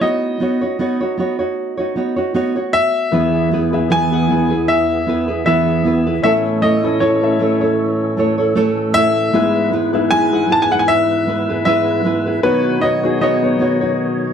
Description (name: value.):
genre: pop.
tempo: 77 BPM.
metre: 4/4.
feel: swing 55% on 16ths.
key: E major.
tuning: A4 = 440 Hz.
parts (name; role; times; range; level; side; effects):
clear upright piano; melody; 0.0-14.3 s; B4 to A5; -18 LUFS; left 2 dB; none.
nylon-string guitar; accompaniment; 0.0-14.3 s; E3 to C#5; -17 LUFS; right 3 dB; none.
warm concert grand piano; accompaniment; 3.1-14.3 s; G#2 to F#5; -22 LUFS; left 8 dB; none.
tonewheel organ; sustained chords; 3.1-14.3 s; E2 to C#5; -24 LUFS; equal; overdrive, chorus vibrato, slow rotary speaker.
room: moderate studio reverb, RT60 0.8 s.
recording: none.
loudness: -14 LUFS.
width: side -8 dB against mid.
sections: 0.0-3.1 A section; 3.1-14.3 B section.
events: none.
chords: 0.0 Badd9; 3.1 E; 6.2 A; 9.3 E/G#; 12.4 Badd9.